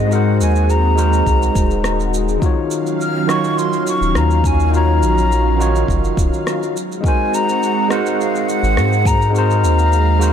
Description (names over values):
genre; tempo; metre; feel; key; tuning
sunset chillout; 104 BPM; 4/4; straight; unclear; A4 = 439 Hz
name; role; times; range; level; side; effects
breathy mellow jazz flute; melody; 0.0-10.3 s; Eb5 to F6; -20 LUFS; left 1 dB; digital delay
overdriven tine electric piano; accompaniment; 0.0-10.3 s; Eb3 to Db5; -20 LUFS; moving between left 7 dB and right 6 dB; auto-pan, digital delay
lush unison pad; sustained chords; 0.0-10.3 s; Eb3 to F5; -22 LUFS; equal; chorus, phaser
round analog bass; bass; 0.0-10.3 s; Eb1 to Ab2; -16 LUFS; equal; none
electronic shaker and rim click; drums; 0.1-10.3 s; none; -27 LUFS; equal; none
electronic kick drum; drums; 1.3-9.2 s; none; -18 LUFS; equal; none
room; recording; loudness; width
light reverb; none; -14 LUFS; side -8 dB against mid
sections
0.0-10.3 A section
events
none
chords
0.0 Ab9; 2.4 Ebm9; 6.8 Ab9